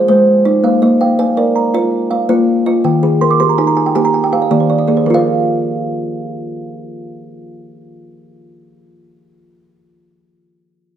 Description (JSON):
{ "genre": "southern african traditional", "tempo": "109 BPM (dotted quarters)", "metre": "12/8", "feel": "straight", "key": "unclear", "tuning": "A4 = 440 Hz", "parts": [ { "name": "kalimba", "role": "arpeggios", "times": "0.0-8.8 s", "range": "Eb3 to F5", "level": "-14 LUFS", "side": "left 2 dB", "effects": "none" }, { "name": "kalimba", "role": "arpeggios", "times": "0.0-8.8 s", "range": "Eb3 to D6", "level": "-15 LUFS", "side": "right 4 dB", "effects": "none" } ], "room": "moderate recital hall reverb, RT60 1.4 s", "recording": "none", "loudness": "-11 LUFS", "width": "side -9 dB against mid", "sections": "0.0-5.1 A section; 5.1-7.3 B section", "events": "kalimba fill 3.0-5.1", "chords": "0.0 Ab; 0.6 Bb; 2.8 Eb; 5.1 N.C." }